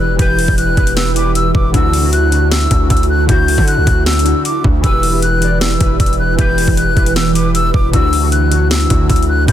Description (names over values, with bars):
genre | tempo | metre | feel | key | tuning
hip hop, trap | 155 BPM | 4/4 | half-time | E minor | A4 = 440 Hz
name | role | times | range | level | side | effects
breathy concert flute | melody | 0.0-9.5 s | D6 to G6 | -18 LUFS | left 2 dB | digital delay
warbly lo-fi synth keys | accompaniment | 0.0-9.5 s | D3 to D5 | -18 LUFS | left 1 dB | chorus
ethereal airy pad | sustained chords | 0.0-9.5 s | D3 to B4 | -21 LUFS | right 3 dB | ensemble chorus, built-in reverb
distorted 808-style bass | bass | 0.0-9.5 s | E1 to D3 | -16 LUFS | equal | distortion
trap drum kit | drums | 0.2-9.5 s | hi-hat, kick drum, snare drum | -15 LUFS | equal | none
room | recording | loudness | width
little or no reverb | dense, heavily limited modern master | -10 LUFS | side -11 dB against mid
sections
0.0-9.5 A section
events
none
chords
0.0 Em; 1.7 Dadd9; 4.8 Em; 7.9 Dadd9